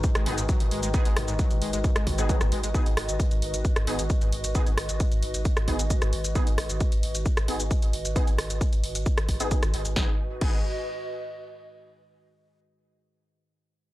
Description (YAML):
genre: driving peak-time techno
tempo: 133 BPM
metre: 4/4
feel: straight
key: G# minor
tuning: A4 = 441 Hz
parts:
  - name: overdriven acid bass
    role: riff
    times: 0.0-2.7 s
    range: G#2 to G#3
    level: -36 LUFS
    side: equal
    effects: distortion, analog chorus, sidechain pumping, tape echo
  - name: warm sub bass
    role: bass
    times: 0.0-10.6 s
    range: G#1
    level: -31 LUFS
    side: equal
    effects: overdrive, sidechain pumping, low-pass filter
  - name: analog drone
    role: drone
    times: 0.0-10.0 s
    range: G#2 to D#3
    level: -39 LUFS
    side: equal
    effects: chorus, sidechain pumping
  - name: electronic kick drum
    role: drums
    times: 0.0-10.5 s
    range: none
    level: -25 LUFS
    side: equal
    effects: none
  - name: punchy analog drum machine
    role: drums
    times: 0.0-10.5 s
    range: crash cymbal, hi-hat, rim click, shaker, snare drum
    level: -32 LUFS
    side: equal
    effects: none
  - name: warbly tape-like pad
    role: texture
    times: 0.0-11.7 s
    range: F#4 to D#5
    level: -35 LUFS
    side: equal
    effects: chorus, built-in reverb, sidechain pumping
  - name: rave stab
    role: stabs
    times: 0.3-10.6 s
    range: B3 to G#4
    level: -34 LUFS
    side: equal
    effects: chorus, built-in reverb, sidechain pumping, tape echo
room: digital ambience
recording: dry, gritty hardware recording, transformer saturation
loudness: -23 LUFS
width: side -16 dB against mid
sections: 0.0-10.0 A section; 10.0-11.8 B section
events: filter sweep on synth stab 0.0-10.0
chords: 0.0 G#m